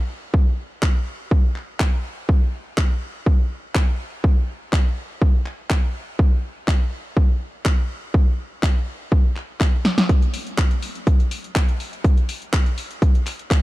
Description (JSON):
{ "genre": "house", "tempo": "123 BPM", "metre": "4/4", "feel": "straight", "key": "none", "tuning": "none", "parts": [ { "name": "electronic kick drum", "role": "drums", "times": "0.3-13.6 s", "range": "none", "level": "-17 LUFS", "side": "equal", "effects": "overdrive" }, { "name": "deep house drum kit", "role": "drums", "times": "0.8-13.6 s", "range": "handclaps, hi-hat, snare drum", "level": "-26 LUFS", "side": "equal", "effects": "overdrive" } ], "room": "little or no reverb", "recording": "dark, warm production", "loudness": "-18 LUFS", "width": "side -18 dB against mid", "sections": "0.0-13.6 A section", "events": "drum fill 9.8", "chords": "none", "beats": "| 0.34 0.83 1.31 1.80 | 2.29 2.78 3.27 3.75 | 4.24 4.73 5.22 5.70 | 6.19 6.68 7.17 7.66 | 8.14 8.63 9.12 9.61 | 10.09 10.58 11.07 11.56 | 12.04 12.53 13.02 13.51" }